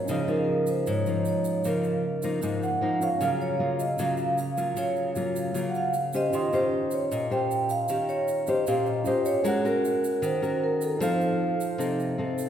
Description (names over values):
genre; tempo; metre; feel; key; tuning
bossa nova; 154 BPM; 4/4; straight; Db major; A4 = 440 Hz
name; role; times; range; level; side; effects
vibraphone with soft mallets; melody; 0.0-12.3 s; Ab4 to G5; -28 LUFS; right 1 dB; none
nylon-string guitar; accompaniment; 0.0-12.5 s; Ab2 to C5; -27 LUFS; left 2 dB; none
tine electric piano; accompaniment; 0.1-12.5 s; Db4 to C6; -33 LUFS; right 3 dB; none
egg shaker; percussion; 0.1-12.5 s; none; -43 LUFS; right 4 dB; none
room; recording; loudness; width
wet concert hall reverb, RT60 1.8 s; recorded in a church or concert hall; -24 LUFS; side -9 dB against mid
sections
0.1-12.5 A section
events
none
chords
0.1 Db69; 3.2 Gbmaj7/Db; 6.3 Eb13; 9.4 Ab9sus4; 11.0 F7